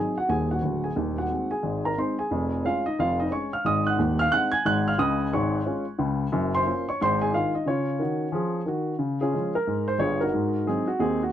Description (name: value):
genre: jazz, stride piano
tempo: 179 BPM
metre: 4/4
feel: swing 62% on 8ths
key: Db major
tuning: A4 = 440 Hz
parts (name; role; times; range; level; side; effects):
- warm upright piano; solo; 0.0-11.3 s; D1 to Ab6; -23 LUFS; equal; none
room: light reverb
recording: close, detailed microphones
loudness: -23 LUFS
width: side -10 dB against mid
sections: 0.0-9.0 A section; 9.0-11.3 A section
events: none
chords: 0.0 Ab7; 1.0 Ab7/Eb; 2.3 Db/F; 3.6 Ab7; 5.0 Db; 6.3 Gbmaj7; 7.0 Ab; 7.7 Db; 10.3 Ab9